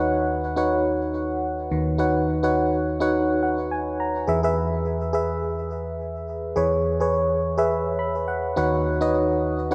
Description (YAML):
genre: pop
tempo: 105 BPM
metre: 4/4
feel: swing 55% on 16ths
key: B major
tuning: A4 = 440 Hz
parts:
  - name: FM electric piano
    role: solo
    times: 0.0-9.7 s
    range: D#2 to B5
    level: -23 LUFS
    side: equal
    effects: chorus, delay
room: wet plate reverb, RT60 3.6 s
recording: dreamy mix soaked in reverb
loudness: -24 LUFS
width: mono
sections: 0.0-9.7 A section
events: FM electric piano fill 3.1-4.3, 7.7-8.9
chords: 0.0 Badd9/D#; 4.3 E; 8.6 Badd9/D#